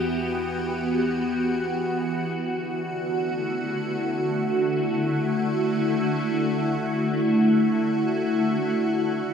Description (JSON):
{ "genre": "ambient", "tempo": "free time", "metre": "none", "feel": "none", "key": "unclear", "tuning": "A4 = 440 Hz", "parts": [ { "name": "evolving wavetable pad", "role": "sustained chords", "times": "0.0-9.3 s", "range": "D3 to G4", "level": "-22 LUFS", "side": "equal", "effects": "ensemble chorus, built-in reverb, phaser, shimmer reverb" }, { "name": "round analog bass", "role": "bass", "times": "0.0-2.3 s", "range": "E2", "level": "-45 LUFS", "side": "equal", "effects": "none" } ], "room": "wet huge ambient reverb, RT60 8.1 s", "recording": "none", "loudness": "-22 LUFS", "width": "side -7 dB against mid", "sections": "0.0-2.4 A section; 2.4-9.3 B section", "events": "none", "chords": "0.0 Em; 2.4 D" }